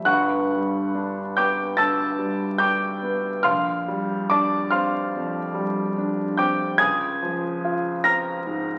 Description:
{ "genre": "classical, impressionist solo piano", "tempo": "72 BPM", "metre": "4/4", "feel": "rubato", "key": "unclear", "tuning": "A4 = 439 Hz", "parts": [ { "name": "warm concert grand piano", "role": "solo", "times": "0.0-8.8 s", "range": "G1 to Bb6", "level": "-23 LUFS", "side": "equal", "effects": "none" } ], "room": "wet recital hall reverb, RT60 1.6 s", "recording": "very old 78 rpm record, vinyl crackle", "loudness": "-23 LUFS", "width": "mono", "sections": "0.1-8.8 A section", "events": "none", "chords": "0.1 Gmaj7; 3.5 Bb69; 6.8 C#maj7" }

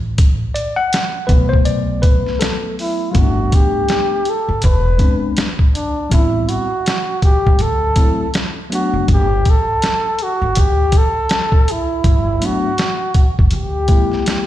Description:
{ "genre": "hip hop, jazz-hop", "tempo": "81 BPM", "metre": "4/4", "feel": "swing 60% on 16ths", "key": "G major", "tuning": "A4 = 443 Hz", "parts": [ { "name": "upright bass", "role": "bass", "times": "0.0-13.9 s", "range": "E1 to D2", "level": "-18 LUFS", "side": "equal", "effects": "none" }, { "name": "trip hop sampler-style drum kit", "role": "drums", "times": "0.2-14.5 s", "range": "hi-hat, kick drum, snare drum", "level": "-15 LUFS", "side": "equal", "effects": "none" }, { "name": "tine electric piano", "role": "accompaniment", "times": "0.5-14.5 s", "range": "F#3 to F#5", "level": "-21 LUFS", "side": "moving between left 5 dB and right 1 dB", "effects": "auto-pan, plate reverb" }, { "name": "breathy flugelhorn", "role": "melody", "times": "2.8-14.5 s", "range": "D4 to B4", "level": "-19 LUFS", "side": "equal", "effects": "slapback echo, plate reverb" } ], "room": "light reverb", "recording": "played on a big sound system in a bare room, stone room reverb", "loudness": "-13 LUFS", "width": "side -13 dB against mid", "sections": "0.0-3.2 A section; 3.2-14.5 B section", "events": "tine electric piano solo 0.0-3.2", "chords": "0.0 Gmaj7 (rootless); 3.2 G; 4.6 E7b13; 6.1 Am9; 7.6 D9; 9.1 Gmaj7" }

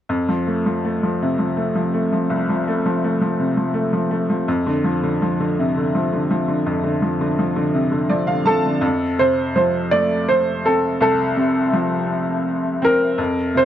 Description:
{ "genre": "pop", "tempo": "55 BPM (dotted quarters)", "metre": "6/8", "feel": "straight", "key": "F major", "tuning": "A4 = 442 Hz", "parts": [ { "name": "bright upright piano", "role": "accompaniment", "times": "0.1-13.7 s", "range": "C2 to A5", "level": "-18 LUFS", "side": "equal", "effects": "none" }, { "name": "clear grand piano", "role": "melody", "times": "8.5-13.7 s", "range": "A4 to D5", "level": "-18 LUFS", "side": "right 1 dB", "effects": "none" } ], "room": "small room ambience", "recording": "dry, close 1970s-style studio recording", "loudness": "-17 LUFS", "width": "side -11 dB against mid", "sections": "0.1-8.8 A section; 8.8-13.7 B section", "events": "upright piano fill 7.7-8.8", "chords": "0.1 F; 4.5 F5; 8.8 F" }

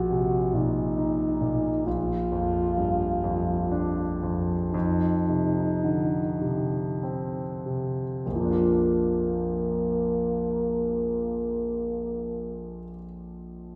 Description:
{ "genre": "classical, romantic duo for French horn and grand piano", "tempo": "31-48 BPM", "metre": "4/4", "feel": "rubato", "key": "Bb major", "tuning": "A4 = 440 Hz", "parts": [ { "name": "mellow French horn", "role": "melody", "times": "0.0-12.8 s", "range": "Bb3 to Gb4", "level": "-30 LUFS", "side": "equal", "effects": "none" }, { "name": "clear concert grand piano", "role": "accompaniment", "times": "0.0-13.8 s", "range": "Bb1 to F4", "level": "-29 LUFS", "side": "equal", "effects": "none" } ], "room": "wet recital hall reverb, RT60 1.4 s", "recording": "recorded in a church or concert hall", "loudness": "-27 LUFS", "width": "mono", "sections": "0.0-8.2 A section; 8.2-13.8 B section", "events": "slowing down 0.0-8.2", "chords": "0.0 Ebm/Bb; 1.9 Bb; 4.7 F5; 8.2 Bb" }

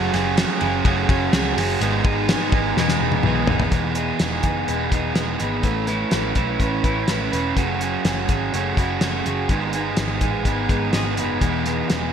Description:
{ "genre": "jangly indie pop", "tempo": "125 BPM", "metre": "4/4", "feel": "straight", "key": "E major", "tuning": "A4 = 436 Hz", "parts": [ { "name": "crunchy overdriven guitar", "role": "accompaniment", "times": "0.0-12.1 s", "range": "G#2 to B4", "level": "-23 LUFS", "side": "right 6 dB", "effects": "none" }, { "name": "twelve-string electric guitar", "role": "arpeggios", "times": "0.0-12.1 s", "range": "G#2 to B4", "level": "-26 LUFS", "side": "left 4 dB", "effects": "lush chorus" }, { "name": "vintage muted picked electric bass", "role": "bass", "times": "0.0-12.1 s", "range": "E1 to C#2", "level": "-27 LUFS", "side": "left 1 dB", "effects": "none" }, { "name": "cloth-damped thuddy drum kit", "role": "drums", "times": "0.1-12.0 s", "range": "hi-hat, kick drum, ride cymbal, snare drum, toms", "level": "-22 LUFS", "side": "left 1 dB", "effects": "gated reverb" } ], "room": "moderate plate reverb, RT60 1.5 s", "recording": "bright 1980s-style digital production", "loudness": "-18 LUFS", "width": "side -8 dB against mid", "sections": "0.0-3.7 A section; 3.7-12.1 B section", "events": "drum fill 2.8-3.7", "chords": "0.0 F#madd9; 1.8 G#m; 2.8 Emaj7; 5.6 Aadd9; 7.6 F#madd9; 9.5 G#m; 11.4 Emaj7" }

